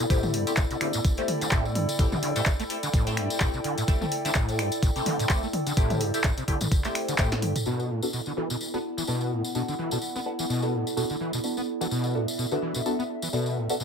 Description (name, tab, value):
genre	acid house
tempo	127 BPM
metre	4/4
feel	swing 56% on 16ths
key	B minor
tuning	A4 = 442 Hz
part	overdriven acid bass	riff	0.0-13.8 s	G2 to B3	-30 LUFS	equal	distortion, ensemble chorus, sidechain pumping, digital delay
part	punchy analog drum machine	drums	0.0-7.6 s	finger snaps, handclaps, hi-hat, snare drum, toms	-30 LUFS	left 1 dB	none
part	warbly tape-like pad	texture	0.0-13.8 s	B3 to G5	-32 LUFS	right 1 dB	chorus, built-in reverb, sidechain pumping
part	band-passed chord stab	stabs	0.1-13.8 s	A3 to A4	-32 LUFS	left 1 dB	phaser, wide subtle chorus, digital delay
part	electronic kick drum	drums	0.1-7.3 s	none	-25 LUFS	equal	overdrive
part	tambourine	percussion	0.1-13.8 s	none	-36 LUFS	left 2 dB	none
room	moderate studio reverb, RT60 0.5 s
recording	none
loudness	-24 LUFS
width	side -6 dB against mid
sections	0.0-7.7 A section; 7.7-13.8 B section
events	drum fill 7.3-7.7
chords	0.1 Am7; 7.7 Bm7